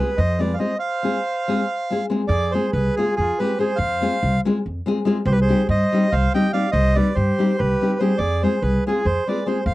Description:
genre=balkan folk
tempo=285 BPM (eighths)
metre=7/8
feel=straight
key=F dorian sharp4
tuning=A4 = 439 Hz
part: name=accordion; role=melody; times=0.0-9.7 s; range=Ab4 to G5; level=-23 LUFS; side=right 1 dB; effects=none
part: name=mellow trumpet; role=second line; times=0.0-9.7 s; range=F4 to Eb5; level=-29 LUFS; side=right 3 dB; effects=none
part: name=nylon-string guitar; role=accompaniment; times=0.0-9.6 s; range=G3 to Ab4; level=-21 LUFS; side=left 2 dB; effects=none
part: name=upright bass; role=bass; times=0.2-9.7 s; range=C2 to G2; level=-20 LUFS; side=equal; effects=none
room=little or no reverb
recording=dry, close 1970s-style studio recording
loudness=-18 LUFS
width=side -17 dB against mid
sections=0.0-2.3 A section; 2.3-9.7 B section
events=speeding up 0.0-9.7; break 0.8-2.3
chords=0.0 Fm; 5.2 Cm; 8.2 Fm

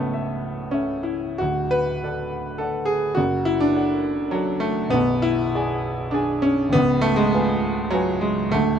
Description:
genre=classical, romantic character piece for solo piano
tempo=101 BPM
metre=3/4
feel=uneven beats, rubato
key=unclear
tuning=A4 = 441 Hz
part: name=warm grand piano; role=solo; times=0.0-8.8 s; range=B0 to G#5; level=-20 LUFS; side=equal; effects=none
room=light reverb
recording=minimal, uncompressed stereo recording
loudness=-20 LUFS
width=side -8 dB against mid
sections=0.0-8.8 A section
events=none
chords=0.0 A/C#; 1.4 D; 3.2 D/F#; 4.9 G#dim/B; 6.7 C#7

